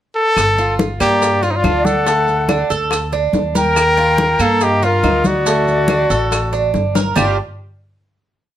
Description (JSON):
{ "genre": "latin, Cuban son and guajira", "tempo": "141 BPM", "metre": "4/4", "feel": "straight", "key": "G minor", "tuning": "A4 = 442 Hz", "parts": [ { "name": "warm trumpet", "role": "melody", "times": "0.2-7.4 s", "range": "Eb4 to Bb4", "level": "-16 LUFS", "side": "equal", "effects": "none" }, { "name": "upright bass", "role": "bass", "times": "0.4-7.4 s", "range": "G1 to G2", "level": "-21 LUFS", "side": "equal", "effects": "none" }, { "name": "bongos", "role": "percussion", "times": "0.4-7.3 s", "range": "none", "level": "-26 LUFS", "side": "left 6 dB", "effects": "none" }, { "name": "claves", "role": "percussion", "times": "0.4-7.3 s", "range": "none", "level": "-26 LUFS", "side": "left 2 dB", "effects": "none" }, { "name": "congas", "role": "percussion", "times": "0.4-7.3 s", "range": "none", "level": "-21 LUFS", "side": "left 1 dB", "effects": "none" }, { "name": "maracas", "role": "percussion", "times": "0.4-7.3 s", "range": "none", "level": "-29 LUFS", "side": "right 6 dB", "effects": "none" }, { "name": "Cuban tres", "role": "arpeggios", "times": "0.6-7.4 s", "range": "G3 to Bb4", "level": "-19 LUFS", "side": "right 4 dB", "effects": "none" }, { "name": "breathy bright concert flute", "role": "second line", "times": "1.0-7.4 s", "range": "Bb4 to G5", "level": "-21 LUFS", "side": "left 3 dB", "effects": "none" } ], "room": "moderate studio reverb, RT60 0.6 s", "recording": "none", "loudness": "-13 LUFS", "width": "side -11 dB against mid", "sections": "0.0-0.4 pickup bar; 0.4-7.2 A section; 7.2-8.6 final chord", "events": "drum fill 6.7-7.2", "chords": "0.4 Gm7; 2.1 D; 3.8 Ebadd9; 5.5 D; 7.2 G5", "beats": "| 0.37 0.79 1.22 1.64 | 2.06 2.49 2.92 3.34 | 3.77 4.19 4.62 5.04 | 5.46 5.89 6.32 6.74 | 7.16" }